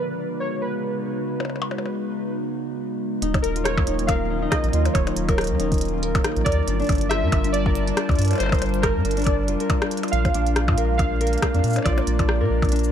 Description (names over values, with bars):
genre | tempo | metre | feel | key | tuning
IDM | 139 BPM | 4/4 | swing 56% on 16ths | Eb minor | A4 = 435 Hz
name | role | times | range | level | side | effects
warbly lo-fi synth keys | melody | 0.0-12.7 s | Bb4 to F5 | -28 LUFS | right 2 dB | chorus, ping-pong delay
warbly tape-like pad | sustained chords | 0.0-12.9 s | Db3 to A5 | -28 LUFS | right 1 dB | chorus, built-in reverb, vintage 12-bit sampler grit, sidechain pumping
glitchy drum kit | drums | 1.4-12.9 s | hi-hat, percussion blips, rim click, shaker | -28 LUFS | left 2 dB | none
Celtic harp | arpeggios | 3.2-12.9 s | D4 to Bb4 | -27 LUFS | left 4 dB | tape echo
round analog bass | bass | 3.2-12.9 s | Eb1 to Bb2 | -23 LUFS | equal | none
electronic kick drum | drums | 3.3-12.7 s | none | -23 LUFS | equal | none
room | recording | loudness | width
little or no reverb | none | -20 LUFS | side -9 dB against mid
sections
0.0-3.2 A section; 3.2-12.9 B section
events
none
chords
0.0 Db7sus4; 3.2 Ebm7; 6.7 Gm9; 10.1 Bb7